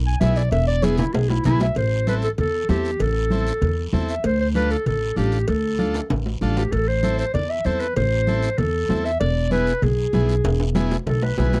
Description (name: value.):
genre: latin, cumbia.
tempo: 193 BPM.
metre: 4/4.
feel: straight.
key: A minor.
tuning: A4 = 439 Hz.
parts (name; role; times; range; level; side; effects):
upright bass; bass; 0.0-11.6 s; E1 to E2; -24 LUFS; equal; none.
warm clarinet; melody; 0.1-11.6 s; E4 to G#5; -26 LUFS; equal; none.
combo organ; accompaniment; 0.2-11.6 s; B3 to A4; -30 LUFS; equal; none.
congas; percussion; 0.2-11.5 s; none; -28 LUFS; equal; none.
cowbell and timbales; percussion; 0.2-11.6 s; none; -31 LUFS; equal; none.
guiro; percussion; 0.2-11.6 s; none; -44 LUFS; equal; none.
room: little or no reverb.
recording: dry, close 1970s-style studio recording.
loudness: -21 LUFS.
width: mono.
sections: 0.0-1.8 A section; 1.8-11.6 B section.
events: clarinet solo 0.0-1.8; drum fill 1.0-1.8, 5.9-6.7, 10.4-11.6.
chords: 0.0 E; 1.8 Am; 4.2 Dm; 6.7 Am; 9.2 E.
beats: 0.21 | 0.52 0.83 1.14 1.45 | 1.76 2.07 2.38 2.69 | 3.00 3.31 3.62 3.93 | 4.24 4.55 4.86 5.17 | 5.48 5.79 6.10 6.41 | 6.72 7.03 7.34 7.65 | 7.96 8.27 8.58 8.89 | 9.21 9.52 9.82 10.14 | 10.45 10.76 11.07 11.38.